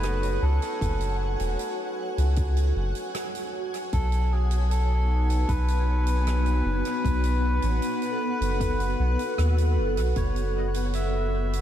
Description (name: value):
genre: ambient dub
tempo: 77 BPM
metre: 4/4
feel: straight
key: B mixolydian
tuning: A4 = 440 Hz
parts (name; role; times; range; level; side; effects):
- melodica; melody; 0.0-11.6 s; G#4 to E5; -33 LUFS; left 1 dB; dub echo
- granular cloud pad; sustained chords; 0.0-11.6 s; B3 to G#5; -32 LUFS; left 1 dB; built-in reverb
- vibraphone with medium mallets; arpeggios; 0.0-11.6 s; A3 to B5; -34 LUFS; right 2 dB; analog delay
- soft dub sub bass; bass; 0.0-11.6 s; E1 to D#2; -24 LUFS; equal; none
- soft-mallet drum kit; drums; 0.0-11.6 s; hi-hat, rim click; -40 LUFS; right 3 dB; dub echo
- electronic kick drum; drums; 0.8-10.3 s; none; -30 LUFS; equal; none
room: light reverb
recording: none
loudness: -23 LUFS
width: side -11 dB against mid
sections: 0.0-11.6 A section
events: none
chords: 0.0 F#m; 3.9 B7; 10.2 F#m7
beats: 0.03 | 0.81 1.59 2.37 3.15 | 3.93 4.71 5.49 6.27 | 7.04 7.82 8.60 9.38 | 10.16 10.94